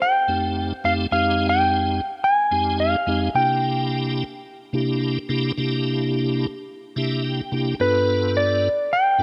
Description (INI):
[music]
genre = blues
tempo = 108 BPM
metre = 4/4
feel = straight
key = C mixolydian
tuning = A4 = 440 Hz
[part]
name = clean lap steel guitar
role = melody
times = 0.0-4.1, 7.8-9.2 s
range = B4 to Ab5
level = -22 LUFS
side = equal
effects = none
[part]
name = tonewheel organ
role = accompaniment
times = 0.3-9.2 s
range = F2 to G5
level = -25 LUFS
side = equal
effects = slow rotary speaker, chorus vibrato
[sound]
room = moderate plate reverb, RT60 3.0 s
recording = none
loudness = -22 LUFS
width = mono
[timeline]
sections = 0.0-9.2 A section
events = tonewheel organ fill 6.7-7.8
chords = 0.0 F7; 1.1 Fm7; 3.4 C7; 7.8 G7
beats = 0.01 0.57 | 1.12 1.68 2.24 2.80 | 3.35 3.91 4.47 5.02 | 5.58 6.14 6.69 7.25 | 7.81 8.36 8.92